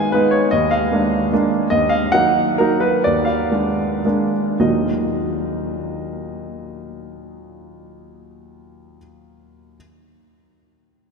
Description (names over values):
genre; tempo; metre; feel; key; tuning
classical, romantic triple-time dance for piano with dotted rhythms; 96-158 BPM; 3/4; rubato; Eb minor; A4 = 440 Hz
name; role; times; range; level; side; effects
clear concert grand piano; solo; 0.0-9.8 s; Eb2 to Ab5; -17 LUFS; right 1 dB; none
room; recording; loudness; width
wet cathedral reverb, RT60 5.2 s; in a vast, echoing space; -16 LUFS; side -5 dB against mid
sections
0.0-4.6 A section; 4.6-7.5 B section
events
slowing down 1.1-4.6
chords
0.0 Abm; 0.5 Bb7/Eb; 1.7 Ebm; 3.0 Bb7/Eb; 4.6 Ebm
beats
0.13 | 0.52 0.91 1.31 | 1.70 2.11 2.58 | 3.04 3.50 4.03 | 4.60 5.10 5.61 | 6.08 6.56 7.06